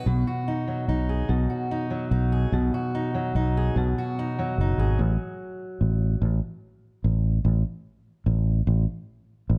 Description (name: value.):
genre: indie folk with a building arrangement.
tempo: 146 BPM.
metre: 3/4.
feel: straight.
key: B mixolydian.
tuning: A4 = 440 Hz.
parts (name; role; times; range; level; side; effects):
fingerpicked steel-string acoustic guitar; accompaniment; 0.0-6.2 s; B2 to G#4; -30 LUFS; equal; none.
fingered electric bass; bass; 0.1-9.6 s; F#1 to B1; -25 LUFS; equal; none.
room: light reverb.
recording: none.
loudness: -25 LUFS.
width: mono.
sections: 0.1-9.6 A section.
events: build-up 0.1-9.6.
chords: 0.1 B; 5.0 F#m/A.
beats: | 0.06 0.47 0.88 | 1.29 1.71 2.12 | 2.53 2.94 3.35 | 3.76 4.17 4.58 | 5.00 5.41 5.82 | 6.23 6.64 7.05 | 7.46 7.87 8.28 | 8.69 9.10 9.51.